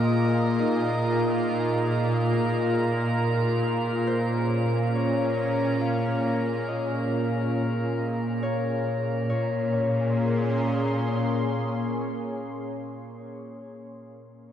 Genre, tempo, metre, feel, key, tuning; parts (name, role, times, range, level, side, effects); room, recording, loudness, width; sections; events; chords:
ambient; 69 BPM; 4/4; straight; Bb minor; A4 = 440 Hz
warm analog pad; sustained chords; 0.0-13.5 s; Bb2 to C6; -25 LUFS; equal; chorus
Celtic harp; arpeggios; 0.0-13.5 s; Bb3 to F5; -32 LUFS; left 4 dB; diffuse ambient delay
rich studio cello section; bass; 0.0-11.9 s; Bb2; -33 LUFS; equal
drifting glass-harmonics texture; texture; 0.0-9.3 s; Bb4 to Bb5; -32 LUFS; right 2 dB; chorus, built-in reverb
wet cathedral reverb, RT60 6.1 s; in a vast, echoing space; -23 LUFS; side -9 dB against mid
0.0-9.3 A section; 9.3-12.8 B section
0.0 Db6/Bb; 9.3 Bbm7